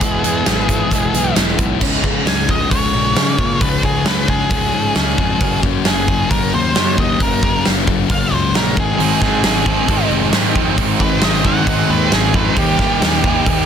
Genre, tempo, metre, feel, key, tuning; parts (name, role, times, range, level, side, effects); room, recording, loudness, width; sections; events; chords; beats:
quiet-loud alternative rock; 134 BPM; 4/4; straight; A4 = 445 Hz
octave-fuzz lead guitar; melody; 0.0-13.7 s; G4 to Ab5; -20 LUFS; right 2 dB; distortion
picked swing-style acoustic guitar; arpeggios; 0.0-13.7 s; Ab2 to E4; -28 LUFS; right 7 dB; analog delay
thick fuzz guitar; riff; 0.0-13.7 s; Gb2 to E4; -19 LUFS; left 10 dB; distortion
fuzz picked electric bass; bass; 0.0-13.7 s; E1 to Eb3; -22 LUFS; equal; overdrive
huge arena drum kit; drums; 0.0-13.6 s; crash cymbal, hi-hat, kick drum, snare drum; -18 LUFS; right 1 dB
distorted electric guitar; riff; 9.0-13.7 s; Ab2 to Eb4; -19 LUFS; right 14 dB; overdrive
light reverb, small room ambience; dense, heavily limited modern master; -13 LUFS; side -8 dB against mid
0.0-1.8 A section; 1.8-13.7 B section
lead electric guitar solo 1.8-13.7
0.0 E; 1.8 Db; 5.4 Gbadd9; 8.8 Ab; 12.6 Ebadd9
| 0.02 0.47 0.92 1.37 | 1.82 2.27 2.71 3.16 | 3.61 4.06 4.51 4.96 | 5.41 5.86 6.30 6.75 | 7.20 7.65 8.10 8.54 | 8.99 9.44 9.89 10.33 | 10.78 11.23 11.67 12.12 | 12.57 13.02 13.46